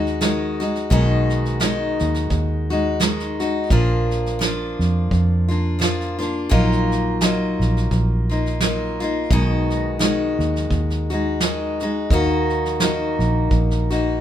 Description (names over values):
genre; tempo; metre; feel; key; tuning
acoustic folk duo or small band; 86 BPM; 4/4; swing 56% on 8ths; Eb harmonic minor; A4 = 440 Hz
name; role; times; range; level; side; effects
picked steel-string acoustic guitar; accompaniment; 0.0-14.2 s; Bb2 to Gb4; -21 LUFS; left 1 dB; none
vintage muted fingered electric bass; bass; 0.0-14.2 s; Bb1 to F2; -22 LUFS; right 1 dB; none
soft brush drum kit; drums; 0.1-14.0 s; kick drum, snare drum; -23 LUFS; right 1 dB; none
room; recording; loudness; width
moderate studio reverb, RT60 0.8 s; minimal, uncompressed stereo recording; -18 LUFS; side -10 dB against mid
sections
0.0-14.2 A section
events
none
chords
0.0 Abm7/Cb; 3.7 Bb; 6.5 Ebmadd9/Bb; 9.3 Abm7/Cb; 12.1 Ebm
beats
0.21 | 0.91 1.61 2.31 3.01 | 3.71 4.41 5.11 5.81 | 6.51 7.21 7.91 8.61 | 9.31 10.01 10.71 11.41 | 12.11 12.81 13.51